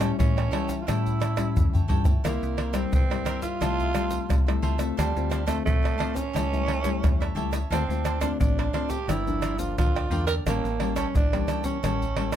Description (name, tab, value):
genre	samba and choro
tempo	88 BPM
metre	4/4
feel	straight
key	unclear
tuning	A4 = 440 Hz
part	growling tenor saxophone	second line	0.0-12.4 s	G3 to Bb4	-30 LUFS	right 5 dB	none
part	cavaquinho	accompaniment	0.0-12.4 s	D4 to G5	-35 LUFS	right 8 dB	none
part	nylon-string guitar	accompaniment	0.0-12.4 s	G2 to F4	-31 LUFS	left 9 dB	none
part	metallic FM bass	bass	0.0-12.4 s	G1 to A2	-29 LUFS	equal	none
part	egg shaker, surdo, pandeiro and tamborim	percussion	0.0-12.4 s	none	-26 LUFS	equal	none
room	light reverb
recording	close, detailed microphones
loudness	-23 LUFS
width	side -10 dB against mid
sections	0.0-12.4 A section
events	tenor saxophone solo 0.0-12.4; drum fill 1.2-2.2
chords	0.0 A7; 2.2 C7; 3.6 Fmaj9/C; 5.0 Dm7; 6.4 A7/C#; 7.7 Dm7; 9.1 Gm7; 10.5 A7b9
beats	0.20 0.88 1.56 | 2.25 2.93 3.62 4.30 | 4.98 5.67 6.35 7.04 | 7.72 8.41 9.09 9.78 | 10.46 11.15 11.84